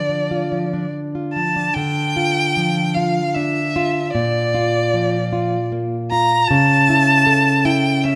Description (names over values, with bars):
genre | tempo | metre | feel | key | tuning
romantic duo for violin and classical guitar | 70-79 BPM | 3/4 | rubato | D minor | A4 = 440 Hz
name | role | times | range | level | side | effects
rich violin | melody | 0.0-8.2 s | D5 to Bb5 | -20 LUFS | equal | none
nylon-string guitar | accompaniment | 0.0-8.2 s | Bb2 to A4 | -21 LUFS | equal | none
room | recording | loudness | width
moderate recital hall reverb, RT60 1.7 s | none | -18 LUFS | mono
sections
0.0-1.8 A section; 1.8-8.2 B section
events
none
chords
0.0 Dm; 4.1 Bb; 6.5 A/C#